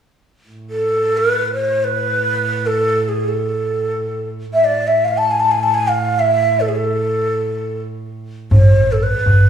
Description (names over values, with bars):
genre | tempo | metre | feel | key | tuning
Arabic maqam ensemble | free time | none | none | A maqam suznak | A4 = 440 Hz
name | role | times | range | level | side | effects
rich cello | drone | 0.5-8.6 s | A2 | -25 LUFS | right 3 dB | none
breathy ney | melody | 0.7-9.5 s | G#4 to A5 | -16 LUFS | equal | none
upright bass | bass | 8.5-9.5 s | A1 | -17 LUFS | right 1 dB | none
darbuka | percussion | 8.5-9.4 s | none | -11 LUFS | equal | none
room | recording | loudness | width
wet large studio reverb, RT60 1.2 s | band playing live in one room, small room ambience | -14 LUFS | side -9 dB against mid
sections
0.5-8.5 A section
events
none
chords
none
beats
free time